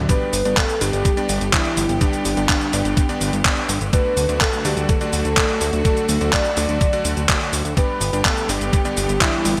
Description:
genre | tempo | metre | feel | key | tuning
italo disco | 125 BPM | 4/4 | straight | G major | A4 = 444 Hz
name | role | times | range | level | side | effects
bright electric grand piano | stabs | 0.0-9.5 s | G2 to D5 | -30 LUFS | equal | none
fat analog bass | bass | 0.0-9.6 s | G1 to D2 | -25 LUFS | equal | tube saturation
soft octave-layered synth lead | melody | 0.1-9.6 s | D4 to D5 | -26 LUFS | equal | chorus, delay
bright studio string section | sustained chords | 0.1-9.6 s | D3 to G4 | -30 LUFS | equal | none
electronic kick drum | drums | 0.1-9.3 s | none | -23 LUFS | equal | none
gated 80s digital drum machine | drums | 0.1-9.6 s | cabasa, handclaps, hi-hat | -24 LUFS | equal | gated reverb, overdrive
room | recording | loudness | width
light reverb, digital ambience | bright 1980s-style digital production | -19 LUFS | mono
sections
0.0-9.6 A section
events
none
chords
0.1 G; 3.9 D; 7.8 G

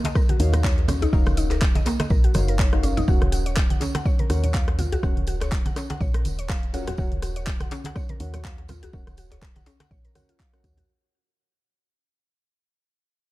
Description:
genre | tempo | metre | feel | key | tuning
afro house | 123 BPM | 4/4 | swing 56% on 16ths | Eb minor | A4 = 440 Hz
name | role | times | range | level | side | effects
mallet-like synth pluck | arpeggios | 0.0-10.9 s | Bb3 to Gb5 | -32 LUFS | equal | chorus, sidechain pumping, ping-pong delay
deep mellow chord stab | stabs | 0.0-10.9 s | Db4 to Gb5 | -34 LUFS | left 3 dB | chorus, sidechain pumping, ping-pong delay
deep house drum kit | drums | 0.0-10.9 s | handclaps, hi-hat, rim click | -32 LUFS | equal | none
congas | percussion | 0.0-10.9 s | none | -32 LUFS | right 2 dB | none
djembe | percussion | 0.1-10.8 s | none | -31 LUFS | left 2 dB | none
tambourine | percussion | 0.1-10.9 s | none | -44 LUFS | right 5 dB | none
electronic kick drum | drums | 0.2-10.8 s | none | -23 LUFS | equal | none
woody FM bass | bass | 0.4-10.8 s | Eb1 to Eb2 | -25 LUFS | equal | sidechain pumping
room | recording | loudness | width
studio reverb | dark, warm production | -20 LUFS | side -18 dB against mid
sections
0.0-10.9 A section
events
drop 0.0-10.9; fade-out 3.1-10.9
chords
0.0 Ebm7

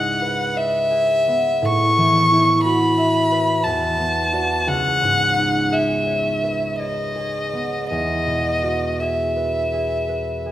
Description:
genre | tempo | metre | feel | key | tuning
classical, impressionist duo for violin and harp | 53-61 BPM | 3/4 | rubato | unclear | A4 = 436 Hz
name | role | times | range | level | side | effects
dark violin | melody | 0.0-10.5 s | D#5 to C#6 | -19 LUFS | left 1 dB | none
concert harp | accompaniment | 0.0-10.5 s | C#2 to E5 | -22 LUFS | right 1 dB | none
room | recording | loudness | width
wet recital hall reverb, RT60 1.5 s | none | -17 LUFS | side -13 dB against mid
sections
0.0-10.5 A section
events
none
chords
0.0 C#m9; 1.6 A69; 3.7 E9sus4; 4.7 C#m9; 7.9 Eadd9

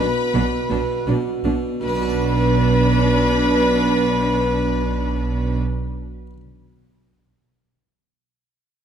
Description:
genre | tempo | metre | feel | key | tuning
classical, baroque-style concerto movement with solo episodes | 80 BPM | 4/4 | straight | B minor | A4 = 436 Hz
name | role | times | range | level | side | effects
rich chamber violin section | melody | 0.0-5.6 s | B5 | -29 LUFS | left 5 dB | none
rich violin | melody | 0.0-5.6 s | B4 | -24 LUFS | left 1 dB | none
rich symphonic violin section | second line | 0.0-5.6 s | B4 | -29 LUFS | equal | none
harpsichord | accompaniment | 0.0-6.4 s | B2 to D5 | -28 LUFS | right 4 dB | none
rich chamber viola section | accompaniment | 0.0-5.6 s | D4 | -25 LUFS | right 1 dB | none
rich chamber cello section | bass | 0.0-5.6 s | B2 | -23 LUFS | right 3 dB | none
warm studio double bass section | bass | 0.0-5.6 s | B1 | -23 LUFS | right 1 dB | none
room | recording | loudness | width
moderate scoring stage reverb, RT60 1.9 s | dark, warm production | -17 LUFS | side -8 dB against mid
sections
0.0-1.8 A section; 1.8-4.8 B section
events
slowing down 0.0-1.8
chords
0.0 Bm

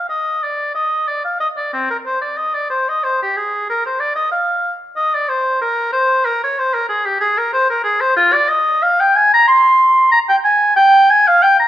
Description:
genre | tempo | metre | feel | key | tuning
classical, baroque-style fantasia for unaccompanied oboe | 92 BPM | 4/4 | rubato | C minor | A4 = 440 Hz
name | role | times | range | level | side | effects
warm oboe | solo | 0.0-11.7 s | C4 to C6 | -12 LUFS | equal | none
room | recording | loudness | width
moderate recital hall reverb, RT60 1.4 s | none | -13 LUFS | side -12 dB against mid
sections
0.0-11.7 A section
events
none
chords
none

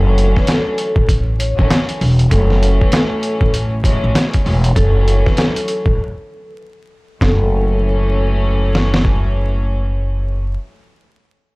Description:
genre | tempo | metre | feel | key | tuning
hip hop, boom-bap hip-hop | 98 BPM | 4/4 | swing 61% on 16ths | F# minor | A4 = 440 Hz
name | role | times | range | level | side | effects
vibraphone with medium mallets | melody | 0.0-9.0 s | A4 to C#5 | -22 LUFS | left 1 dB | high-pass filter, low-pass filter
warm studio string section | accompaniment | 0.0-10.4 s | F#2 to C#4 | -23 LUFS | equal | high-pass filter, low-pass filter
upright bass | bass | 0.0-10.5 s | E1 to A1 | -15 LUFS | equal | tube saturation
trip hop sampler-style drum kit | drums | 0.2-9.2 s | hi-hat, kick drum, rim click, snare drum | -16 LUFS | equal | none
room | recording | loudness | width
small room ambience | dry, gritty hardware recording, vinyl crackle | -13 LUFS | side -25 dB against mid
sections
0.0-7.2 A section; 7.2-9.7 B section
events
break 6.0-7.2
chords
0.0 E13sus4; 2.3 F#m7; 4.8 Bm11/F# (rootless); 7.2 F#m7

